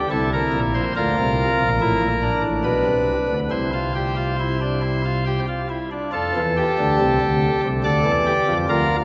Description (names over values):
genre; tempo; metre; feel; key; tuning
classical, baroque-style 3-part fugue for pipe organ; 70 BPM; 3/4; straight; F major; A4 = 439 Hz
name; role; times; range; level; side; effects
pipe organ, cornet; solo; 0.0-9.0 s; A1 to D5; -21 LUFS; equal; none
room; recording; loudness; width
wet church reverb, RT60 2.9 s; recorded in a church or concert hall, nothing above 7.8 kHz; -21 LUFS; mono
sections
0.0-6.1 A section; 6.1-9.0 B section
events
none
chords
0.1 Am/C; 1.0 Bbmaj9#11; 2.6 Bm; 3.5 C; 7.8 Dm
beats
0.12 | 0.96 1.80 2.65 | 3.52 4.40 5.27 | 6.14 7.00 7.85 | 8.70